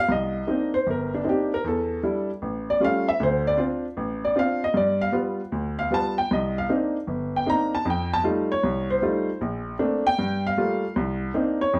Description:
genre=solo jazz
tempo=154 BPM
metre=4/4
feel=swing 66% on 8ths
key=unclear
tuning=A4 = 440 Hz
part: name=warm upright piano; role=solo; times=0.0-11.8 s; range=G1 to Bb5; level=-24 LUFS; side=equal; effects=none
room=moderate club reverb, RT60 0.7 s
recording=heard from further back in the room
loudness=-25 LUFS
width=mono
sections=0.1-11.8 A section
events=upright piano solo 0.0-11.8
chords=0.1 Cm9; 1.6 Emadd11; 2.4 A7b13; 3.2 Dm7; 4.7 G7; 6.3 Cm9; 7.8 F9; 9.4 Bbmaj9; 10.2 Gm9; 11.0 Cm9

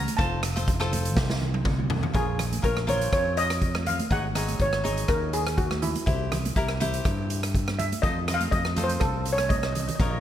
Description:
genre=calypso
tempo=122 BPM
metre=4/4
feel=straight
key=Bb minor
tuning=A4 = 440 Hz
part: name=steel pan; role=melody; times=0.0-10.2 s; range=E4 to A5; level=-28 LUFS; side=equal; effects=ping-pong delay
part: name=fingered electric bass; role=bass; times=0.0-10.2 s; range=F1 to G2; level=-29 LUFS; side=equal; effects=none
part: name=street-band drum kit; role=drums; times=0.1-10.1 s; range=hi-hat, kick drum, rim click, snare drum, toms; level=-28 LUFS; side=equal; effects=none
part: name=congas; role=percussion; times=0.1-10.1 s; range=none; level=-35 LUFS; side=right 2 dB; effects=none
part: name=cavaquinho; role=accompaniment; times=0.2-10.2 s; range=Eb4 to Eb5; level=-33 LUFS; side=left 3 dB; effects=none
room=light reverb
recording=none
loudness=-23 LUFS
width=side -11 dB against mid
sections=0.0-2.1 A section; 2.1-10.2 B section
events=drum fill 1.2-2.1, 9.4-10.0; steel pan solo 2.1-10.2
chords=0.2 F; 2.1 Bbm7; 4.1 Ab7sus4; 6.1 C; 8.0 F7

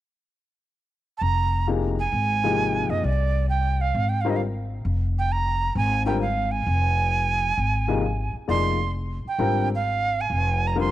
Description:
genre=modal jazz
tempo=132 BPM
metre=4/4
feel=swing 68% on 8ths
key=F dorian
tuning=A4 = 441 Hz
part: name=breathy bright jazz flute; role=melody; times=1.2-10.9 s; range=D5 to C6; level=-25 LUFS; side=right 5 dB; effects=cassette tape
part: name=upright bass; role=bass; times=1.2-10.9 s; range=F1 to C2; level=-24 LUFS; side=left 1 dB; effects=none
part: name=warm upright piano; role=accompaniment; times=1.7-10.9 s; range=C3 to D5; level=-27 LUFS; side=left 6 dB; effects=none
room=light reverb, small room ambience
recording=home recording on cassette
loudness=-21 LUFS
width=side -13 dB against mid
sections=0.0-1.2 A section; 1.2-10.9 B section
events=none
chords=0.0 N.C.; 1.2 Fm; 8.5 Ab/F

